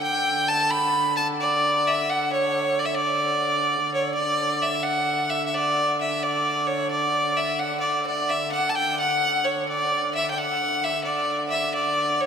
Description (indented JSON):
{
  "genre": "medieval dance",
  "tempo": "87 BPM (dotted quarters)",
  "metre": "6/8",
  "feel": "straight",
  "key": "D major",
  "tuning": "A4 = 440 Hz",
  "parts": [
    { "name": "clear fiddle", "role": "melody", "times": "0.0-12.3 s", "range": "C#5 to B5", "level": "-22 LUFS", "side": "equal", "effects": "none" },
    { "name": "dark hurdy-gurdy", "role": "drone", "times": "0.0-12.3 s", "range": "D3", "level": "-31 LUFS", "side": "equal", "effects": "none" }
  ],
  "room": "wet cathedral reverb, RT60 4.4 s",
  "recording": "none",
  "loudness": "-21 LUFS",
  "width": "side -7 dB against mid",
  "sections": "0.0-4.2 A section; 4.2-12.3 B section",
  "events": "none",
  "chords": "none"
}